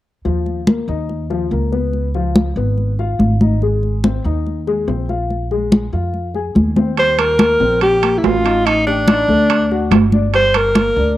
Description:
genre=Afro-Cuban jazz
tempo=143 BPM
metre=4/4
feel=straight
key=Eb major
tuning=A4 = 440 Hz
part: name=dark baby grand piano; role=accompaniment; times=0.2-11.2 s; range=F3 to Ab5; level=-22 LUFS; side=left 6 dB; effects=cassette tape
part: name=upright bass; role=bass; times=0.3-11.2 s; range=G1 to F2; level=-19 LUFS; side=right 1 dB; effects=none
part: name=congas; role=percussion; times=0.3-11.2 s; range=none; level=-16 LUFS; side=left 1 dB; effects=none
part: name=bright alto saxophone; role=melody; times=7.0-11.2 s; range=D4 to C5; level=-14 LUFS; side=equal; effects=cassette tape
part: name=timbales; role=percussion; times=7.0-11.0 s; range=none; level=-20 LUFS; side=right 10 dB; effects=none
room=moderate spring reverb, RT60 1.1 s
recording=home recording on cassette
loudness=-13 LUFS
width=side -14 dB against mid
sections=0.2-7.0 A section; 7.0-11.2 B section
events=none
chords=0.2 Ebsus2; 1.9 Db7; 3.6 Abadd9; 5.3 Bb5; 7.0 Eb69; 8.7 Ebmaj7#11/A; 9.5 D; 10.3 Gm

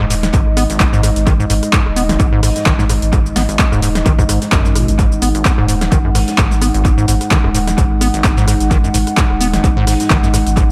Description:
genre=acid house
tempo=129 BPM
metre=4/4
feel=swing 55% on 16ths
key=unclear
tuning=A4 = 441 Hz
part: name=dark analog pad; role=sustained chords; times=0.0-10.7 s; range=G#3 to F#5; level=-22 LUFS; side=equal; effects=chorus, sidechain pumping
part: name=acid bass, square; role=riff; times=0.0-10.6 s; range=G#1 to B3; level=-21 LUFS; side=equal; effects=vintage 12-bit sampler grit, sidechain pumping, analog delay
part: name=saturated sub bass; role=bass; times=0.0-10.7 s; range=D#1 to G#1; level=-20 LUFS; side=equal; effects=sidechain pumping
part: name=punchy analog drum machine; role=drums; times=0.0-10.7 s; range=handclaps, hi-hat, rim click, shaker, snare drum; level=-22 LUFS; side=equal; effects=overdrive, small room ambience, analog delay
part: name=open jazz drum kit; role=drums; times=0.1-10.7 s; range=hi-hat, snare drum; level=-37 LUFS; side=equal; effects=none
part: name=electronic kick drum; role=drums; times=0.3-10.7 s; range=none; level=-16 LUFS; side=equal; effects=overdrive, small room ambience
room=light reverb, digital ambience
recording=echo-heavy mix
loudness=-14 LUFS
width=mono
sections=0.0-10.7 A section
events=none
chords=0.0 G#5

